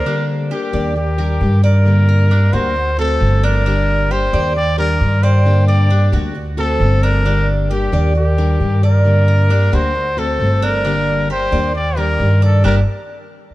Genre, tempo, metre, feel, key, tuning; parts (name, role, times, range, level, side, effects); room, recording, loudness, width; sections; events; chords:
latin; 134 BPM; 4/4; straight; G harmonic minor; A4 = 441 Hz
breathy trumpet; melody; 0.0-12.8 s; G4 to D5; -20 LUFS; left 1 dB
mellow hollow jazz flute; second line; 0.0-12.8 s; Bb4 to G5; -26 LUFS; left 1 dB
picked plugged-in steel-string acoustic guitar; accompaniment; 0.1-12.8 s; D3 to G4; -23 LUFS; left 3 dB
Cuban tres; arpeggios; 0.1-12.8 s; D4 to D5; -24 LUFS; right 2 dB
upright bass; bass; 0.7-12.8 s; G1 to G2; -14 LUFS; equal
light reverb; heard from further back in the room; -13 LUFS; side -17 dB against mid
0.1-13.5 A section
band accent 12.6-13.5
0.1 Ebmaj7; 1.9 Gm; 2.8 D7; 3.7 Gm; 4.6 Ebmaj7; 5.5 Gm; 6.4 D7; 7.3 Gm; 8.2 Ebmaj7; 9.1 Gm; 10.0 D7; 10.8 Gm; 11.7 Ebmaj7; 12.6 Gm